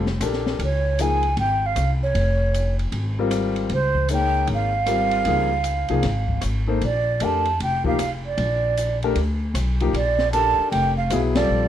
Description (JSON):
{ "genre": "modal jazz", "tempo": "154 BPM", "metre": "4/4", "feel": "swing 64% on 8ths", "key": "unclear", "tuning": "A4 = 440 Hz", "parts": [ { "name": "warm concert grand piano", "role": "accompaniment", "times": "0.0-11.7 s", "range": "F3 to Db5", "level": "-24 LUFS", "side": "left 5 dB", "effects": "none" }, { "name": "upright bass", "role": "bass", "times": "0.0-11.7 s", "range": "F1 to F2", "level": "-23 LUFS", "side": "equal", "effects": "none" }, { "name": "open jazz drum kit", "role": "drums", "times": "0.1-11.4 s", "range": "hi-hat, kick drum, ride cymbal, rim click, snare drum", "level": "-31 LUFS", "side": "left 1 dB", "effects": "none" }, { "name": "breathy mellow silver concert flute", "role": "melody", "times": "0.6-11.7 s", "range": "C5 to A5", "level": "-22 LUFS", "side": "right 3 dB", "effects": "plate reverb" } ], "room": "light reverb", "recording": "none", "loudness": "-19 LUFS", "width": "side -10 dB against mid", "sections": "0.0-11.7 A section", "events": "band accent 11.3", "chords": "0.0 Bbmaj7; 0.6 Dbmaj9; 6.8 Bbmaj7" }